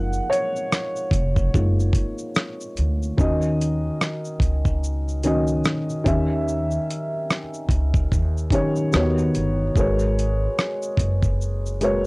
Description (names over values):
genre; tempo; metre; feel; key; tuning
lo-fi hip hop; 73 BPM; 4/4; swing 59% on 16ths; Eb minor; A4 = 440 Hz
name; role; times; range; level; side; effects
felt-muted upright piano; accompaniment; 0.0-12.1 s; Eb3 to Gb5; -23 LUFS; equal; cassette tape
upright bass; bass; 0.0-12.1 s; F1 to Eb2; -23 LUFS; equal; tube saturation
dusty soul sampler-style drum kit; drums; 0.1-12.0 s; hi-hat, kick drum, rim click, shaker; -23 LUFS; equal; overdrive
finger snaps; percussion; 0.7-2.6 s; none; barely audible; none; none
room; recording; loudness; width
little or no reverb; dry, gritty hardware recording; -20 LUFS; side -26 dB against mid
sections
0.0-3.2 A section; 3.2-12.1 B section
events
felt piano solo 0.0-3.2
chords
0.0 Gbmaj13; 3.2 Ebm7; 6.1 Eb7b9; 8.9 Eb7alt; 9.8 Abm11